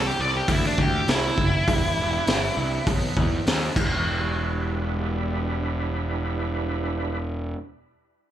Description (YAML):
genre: blues rock power trio and southern rock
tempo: 101 BPM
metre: 4/4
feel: straight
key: E minor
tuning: A4 = 440 Hz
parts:
  - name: octave-fuzz lead guitar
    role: melody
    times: 0.0-2.8 s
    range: D4 to D5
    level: -25 LUFS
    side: equal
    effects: distortion, slapback echo
  - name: overdriven tonewheel organ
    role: sustained chords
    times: 0.0-7.2 s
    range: G3 to B4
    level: -32 LUFS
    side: right 5 dB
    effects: slow rotary speaker, chorus vibrato
  - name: fuzz picked electric bass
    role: bass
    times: 0.0-7.5 s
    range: E1 to E2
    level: -26 LUFS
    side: equal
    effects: overdrive
  - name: raw garage drum kit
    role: drums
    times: 0.5-3.9 s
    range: crash cymbal, hi-hat, kick drum, snare drum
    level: -24 LUFS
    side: equal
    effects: none
room: little or no reverb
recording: live gig heard through the venue's PA, club reverb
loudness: -22 LUFS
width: side -11 dB against mid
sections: 0.0-4.1 A section; 4.1-6.4 B section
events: lead electric guitar solo 0.0-4.1; drum fill 3.8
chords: 0.0 Am7; 1.7 Em7; 2.9 B7b9; 3.8 Em7